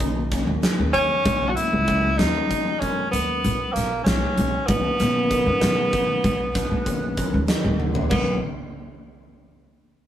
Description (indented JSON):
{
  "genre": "progressive instrumental, band music in an uneven meter",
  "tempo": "192 BPM (eighths)",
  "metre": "11/8",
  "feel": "straight",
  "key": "B major",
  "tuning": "A4 = 436 Hz",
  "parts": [
    { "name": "clear tenor saxophone", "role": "melody", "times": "0.0-8.4 s", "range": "A#3 to F#4", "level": "-23 LUFS", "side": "equal", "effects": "none" },
    { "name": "mellow tine electric piano", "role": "accompaniment", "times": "0.0-8.4 s", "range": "D#3 to F#5", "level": "-29 LUFS", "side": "left 1 dB", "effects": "medium stereo tremolo" },
    { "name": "upright bass", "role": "bass", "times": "0.0-8.4 s", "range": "B1 to B2", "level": "-24 LUFS", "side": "equal", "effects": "none" },
    { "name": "huge arena drum kit", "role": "drums", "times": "0.0-8.3 s", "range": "crash cymbal, hi-hat, kick drum, snare drum, toms", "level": "-26 LUFS", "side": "equal", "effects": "none" }
  ],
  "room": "wet small room reverb, RT60 0.5 s",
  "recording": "rough rehearsal-room recording",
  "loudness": "-19 LUFS",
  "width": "side -11 dB against mid",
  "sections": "0.0-8.1 A section; 8.1-10.1 B section",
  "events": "tine electric piano fill 7.2-8.1; drum fill 7.8-8.1",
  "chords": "0.0 Bmaj7; 1.3 F#add9/B; 4.7 Bmaj7"
}